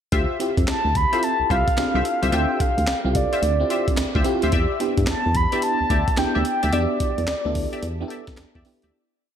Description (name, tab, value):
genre	R&B, new jack swing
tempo	109 BPM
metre	4/4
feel	swing 64% on 16ths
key	D dorian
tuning	A4 = 442 Hz
part	funky polysynth comp	stabs	0.1-8.9 s	F4 to E5	-28 LUFS	left 2 dB	chorus, diffuse ambient delay
part	solid FM bass	bass	0.1-8.9 s	C2 to G2	-23 LUFS	equal	none
part	breakbeat sampler-style drum kit	drums	0.1-8.9 s	handclaps, hi-hat, kick drum, snare drum	-25 LUFS	equal	none
part	FM electric piano with auto-pan	accompaniment	0.4-9.0 s	B3 to A4	-26 LUFS	right 1 dB	phaser
part	mellow horn-like synth lead	melody	0.7-8.4 s	D5 to B5	-24 LUFS	equal	chorus, diffuse ambient delay
room	moderate plate reverb, RT60 2.8 s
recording	dreamy mix soaked in reverb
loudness	-19 LUFS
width	side -9 dB against mid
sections	0.1-8.9 verse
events	fade-out 6.7-8.9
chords	0.1 Dm11; 4.5 Em7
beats	| 0.12 0.67 1.22 1.77 | 2.32 2.88 3.42 3.98 | 4.53 5.08 5.63 6.18 | 6.73 7.28 7.83 8.38